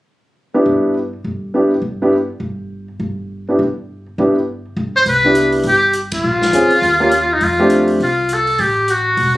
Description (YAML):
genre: jazz, small-group swing and bop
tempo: 204 BPM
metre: 4/4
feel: swing 61% on 8ths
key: unclear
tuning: A4 = 439 Hz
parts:
  - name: warm concert grand piano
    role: accompaniment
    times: 0.5-8.0 s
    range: A3 to Ab4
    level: -14 LUFS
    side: equal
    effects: none
  - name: upright bass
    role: bass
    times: 0.7-9.4 s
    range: E1 to F2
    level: -25 LUFS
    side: equal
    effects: none
  - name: trumpet with metal mute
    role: melody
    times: 5.0-9.4 s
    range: Eb4 to C5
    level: -14 LUFS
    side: left 1 dB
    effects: none
  - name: open jazz drum kit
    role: drums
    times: 5.1-9.3 s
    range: hi-hat, kick drum, ride cymbal, snare drum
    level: -29 LUFS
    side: equal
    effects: none
room: light reverb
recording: recorded on a phone in the room, studio ambience, compression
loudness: -13 LUFS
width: side -16 dB against mid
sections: 0.4-5.1 A section; 5.1-9.4 B section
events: band accent 6.1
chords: 0.4 G6; 5.1 Cmaj9; 6.2 Bbm7; 6.8 Eb9; 7.4 F6; 8.6 A7(no3)